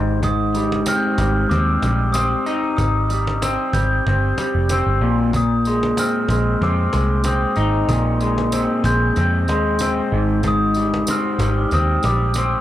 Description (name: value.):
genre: indie pop, bedroom pop.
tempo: 94 BPM.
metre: 4/4.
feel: swing 55% on 16ths.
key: unclear.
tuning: A4 = 442 Hz.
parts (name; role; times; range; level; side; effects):
electric guitar through a small old amp; accompaniment; 0.0-12.6 s; Ab2 to Eb4; -20 LUFS; left 1 dB; lush chorus, vibrato effect.
vintage muted picked electric bass; bass; 0.0-12.5 s; F1 to F2; -20 LUFS; equal; tube saturation.
cajon; drums; 0.1-12.6 s; none; -28 LUFS; equal; none.
glockenspiel with rubber mallets; melody; 0.2-12.6 s; D6 to G6; -24 LUFS; equal; lush chorus.
tambourine; percussion; 0.2-12.5 s; none; -33 LUFS; right 4 dB; none.
room: little or no reverb.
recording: dry, gritty hardware recording.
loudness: -16 LUFS.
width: side -13 dB against mid.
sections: 0.0-12.6 A section.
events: none.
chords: 0.0 Abmaj7; 5.0 Bb9sus4; 10.1 Abmaj7.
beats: | 0.23 0.87 1.51 2.15 | 2.79 3.42 4.06 4.70 | 5.34 5.98 6.61 7.25 | 7.89 8.53 9.16 9.80 | 10.44 11.08 11.71 12.35.